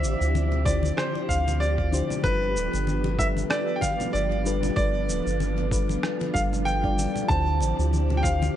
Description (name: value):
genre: sunset chillout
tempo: 95 BPM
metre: 4/4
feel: swing 56% on 16ths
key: unclear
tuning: A4 = 440 Hz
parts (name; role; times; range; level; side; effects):
- bright baby grand piano; melody; 0.0-8.6 s; B4 to A5; -28 LUFS; right 1 dB; analog delay
- mellow FM electric piano; accompaniment; 0.0-8.6 s; D3 to F5; -30 LUFS; moving between left 6 dB and right 2 dB; chorus, auto-pan, low-pass filter, analog delay
- soft string machine; sustained chords; 0.0-8.6 s; F3 to D5; -32 LUFS; equal; ensemble chorus
- round analog bass; bass; 0.0-8.5 s; D1 to D2; -26 LUFS; equal; none
- electronic cabasa and rim click; drums; 0.0-8.5 s; none; -33 LUFS; right 1 dB; overdrive, small room ambience
- congas; percussion; 0.3-8.5 s; none; -35 LUFS; left 4 dB; analog delay
- electronic kick drum; drums; 0.7-8.4 s; none; -28 LUFS; equal; overdrive, small room ambience
room: light reverb, digital ambience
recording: echo-heavy mix, nothing above 11.0 kHz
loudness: -22 LUFS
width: side -11 dB against mid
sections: 0.0-8.6 A section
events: none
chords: 0.0 Dm11; 2.2 G7; 7.3 Dm11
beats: 0.35 0.98 1.61 | 2.24 2.87 3.50 4.13 | 4.77 5.40 6.03 6.66 | 7.29 7.92 8.56